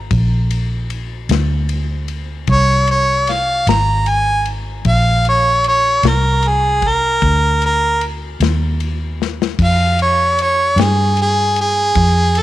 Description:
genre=slow blues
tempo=51 BPM (dotted quarters)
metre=12/8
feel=straight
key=unclear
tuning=A4 = 438 Hz
part: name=vintage muted fingered electric bass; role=bass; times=0.0-12.4 s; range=Ab1 to G2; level=-17 LUFS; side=equal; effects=none
part: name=natural country drum kit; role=drums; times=0.1-12.4 s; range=crash cymbal, kick drum, ride cymbal, snare drum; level=-24 LUFS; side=left 6 dB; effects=none
part: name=bright harmonica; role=melody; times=2.5-12.4 s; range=Ab4 to Bb5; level=-14 LUFS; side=right 1 dB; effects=overdrive
room=small room reverb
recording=1960s-style stereo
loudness=-13 LUFS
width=side -14 dB against mid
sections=0.0-12.4 A section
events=harmonica solo 0.0-12.4; drum fill 9.2-9.6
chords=0.1 Bb9; 9.6 Fsus2

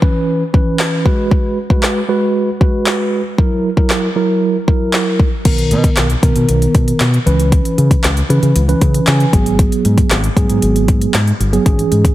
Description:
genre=dance-pop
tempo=116 BPM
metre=4/4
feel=straight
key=unclear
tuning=A4 = 440 Hz
part: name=mellow tine electric piano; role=accompaniment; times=0.0-12.1 s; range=D#3 to G#5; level=-16 LUFS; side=right 2 dB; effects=medium stereo tremolo
part: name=deep house drum kit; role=drums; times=0.0-12.1 s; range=crash cymbal, handclaps, hi-hat, kick drum, snare drum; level=-14 LUFS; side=left 1 dB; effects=none
part: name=fingered electric bass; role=bass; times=5.5-12.1 s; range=G1 to C#3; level=-14 LUFS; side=equal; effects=sidechain pumping
room=light reverb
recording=heavily compressed radio sound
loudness=-11 LUFS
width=side -15 dB against mid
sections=0.0-5.5 A section; 5.5-12.1 B section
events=tine electric piano fill 8.8-9.6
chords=0.0 C#m7; 1.1 G#m7; 3.4 F#7; 5.5 Bmaj7; 7.3 C#m7; 9.3 G#m7

